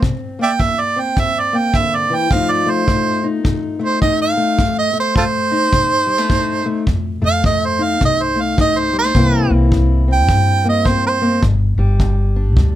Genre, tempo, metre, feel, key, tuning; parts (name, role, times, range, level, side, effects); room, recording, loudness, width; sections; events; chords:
acoustic country blues, solo or duo; 105 BPM; 4/4; swing 61% on 8ths; A4 = 441 Hz
fingerpicked steel-string acoustic guitar; accompaniment; 0.0-12.8 s; F2 to F4; -20 LUFS; left 3 dB
kick drum; drums; 0.0-12.7 s; -19 LUFS; equal
clear harmonica; melody; 0.4-11.4 s; F4 to G5; -16 LUFS; right 4 dB
upright bass; bass; 6.9-12.8 s; G1 to G2; -16 LUFS; equal
little or no reverb; close, detailed microphones; -13 LUFS; side -13 dB against mid
0.0-12.8 A section
harmonica solo 0.0-12.8
0.0 C7; 2.3 F7; 9.2 C7; 11.4 G5